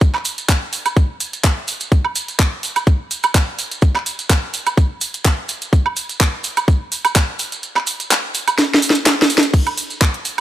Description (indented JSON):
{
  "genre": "house",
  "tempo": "126 BPM",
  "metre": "4/4",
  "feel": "swing 54% on 16ths",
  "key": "none",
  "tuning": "none",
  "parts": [
    { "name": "electronic kick drum", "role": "drums", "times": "0.0-10.1 s", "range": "none", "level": "-13 LUFS", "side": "equal", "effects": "overdrive, small room ambience" },
    { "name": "garage drum kit", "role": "drums", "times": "0.0-10.4 s", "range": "crash cymbal, handclaps, hi-hat, snare drum, woodblock", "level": "-17 LUFS", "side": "right 1 dB", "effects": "overdrive, small room ambience" },
    { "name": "maracas", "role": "percussion", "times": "0.0-10.4 s", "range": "none", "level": "-26 LUFS", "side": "right 4 dB", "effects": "none" }
  ],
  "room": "digital ambience",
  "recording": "none",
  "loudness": "-15 LUFS",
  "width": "side -13 dB against mid",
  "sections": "0.0-9.5 A section",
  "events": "drop 0.0-9.5; kick drops out 7.6-9.5; drum fill 8.6-9.5",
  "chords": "none",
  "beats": "| 0.01 0.49 0.96 1.44 | 1.92 2.39 2.87 3.35 | 3.82 4.30 4.77 5.25 | 5.73 6.20 6.68 7.16 | 7.63 8.11 8.58 9.06 | 9.54 10.01"
}